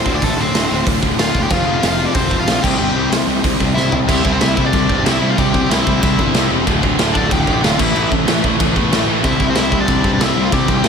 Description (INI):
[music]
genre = punk rock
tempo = 186 BPM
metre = 4/4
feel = straight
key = unclear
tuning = A4 = 440 Hz
[part]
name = overdriven electric guitar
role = melody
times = 0.0-10.9 s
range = A3 to G5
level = -21 LUFS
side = left 1 dB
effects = digital delay
[part]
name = biting overdriven guitar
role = riff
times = 0.0-10.9 s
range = D2 to C4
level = -22 LUFS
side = right 15 dB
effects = none
[part]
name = distorted electric guitar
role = riff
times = 0.0-10.9 s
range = D2 to C4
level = -20 LUFS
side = left 14 dB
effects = distortion
[part]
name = fuzz picked electric bass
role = bass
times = 0.1-10.9 s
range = D1 to G2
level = -21 LUFS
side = equal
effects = overdrive
[part]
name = raw garage drum kit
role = drums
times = 0.1-10.9 s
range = crash cymbal, hi-hat, kick drum, snare drum, toms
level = -18 LUFS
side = equal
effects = none
[part]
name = scooped high-gain guitar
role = riff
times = 4.1-10.9 s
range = D2 to C4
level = -23 LUFS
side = right 1 dB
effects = distortion
[sound]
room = light reverb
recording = none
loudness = -13 LUFS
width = side -6 dB against mid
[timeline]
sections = 0.0-4.1 A section; 4.1-10.9 B section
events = drum fill 3.8-4.1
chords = 0.0 Dm; 1.5 F5; 2.6 C; 6.7 Dm; 7.8 A5; 9.2 C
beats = | 0.21 0.53 0.86 1.18 | 1.50 1.82 2.15 2.47 | 2.79 3.12 3.44 3.76 | 4.08 4.41 4.73 5.05 | 5.37 5.69 6.02 6.34 | 6.66 6.98 7.30 7.62 | 7.95 8.27 8.59 8.91 | 9.23 9.56 9.88 10.20 | 10.52 10.84